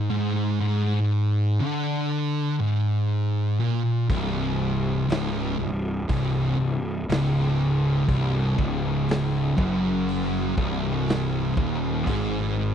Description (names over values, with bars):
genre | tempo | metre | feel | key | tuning
stoner and doom metal | 60 BPM | 4/4 | straight | unclear | A4 = 441 Hz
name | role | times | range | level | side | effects
thick fuzz guitar | riff | 0.0-12.7 s | C2 to D3 | -26 LUFS | left 6 dB | distortion
thick fuzz guitar | riff | 0.0-12.7 s | C2 to D3 | -26 LUFS | right 7 dB | distortion
fuzz fingered electric bass | bass | 4.1-12.7 s | C1 to Ab1 | -29 LUFS | equal | overdrive
raw garage drum kit | drums | 4.1-12.3 s | hi-hat, kick drum, snare drum | -27 LUFS | equal | none
room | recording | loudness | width
small room reverb | dry, close 1970s-style studio recording | -22 LUFS | side -8 dB against mid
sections
0.0-12.7 A section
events
none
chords
0.0 Bb7/Ab; 4.1 Cm; 12.1 Ab5